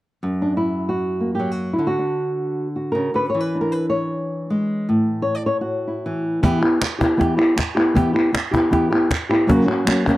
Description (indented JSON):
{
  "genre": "flamenco",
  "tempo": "free time",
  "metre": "none",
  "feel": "none",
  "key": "unclear",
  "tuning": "A4 = 440 Hz",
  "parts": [
    { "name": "flamenco guitar", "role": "melody", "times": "0.2-10.2 s", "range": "F#2 to D5", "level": "-18 LUFS", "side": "equal", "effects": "none" },
    { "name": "cajon", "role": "percussion", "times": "6.4-10.2 s", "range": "none", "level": "-22 LUFS", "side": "left 1 dB", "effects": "none" },
    { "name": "palmas hand claps", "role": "percussion", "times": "6.6-10.2 s", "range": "none", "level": "-25 LUFS", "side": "equal", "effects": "none" }
  ],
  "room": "light reverb",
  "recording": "dry, close 1970s-style studio recording",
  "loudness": "-18 LUFS",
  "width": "side -16 dB against mid",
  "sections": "0.2-6.4 A section; 6.4-10.2 B section",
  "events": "none",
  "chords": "0.2 F#; 1.8 D; 3.3 E7; 4.9 A5; 6.4 Em; 9.5 F#",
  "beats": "free time"
}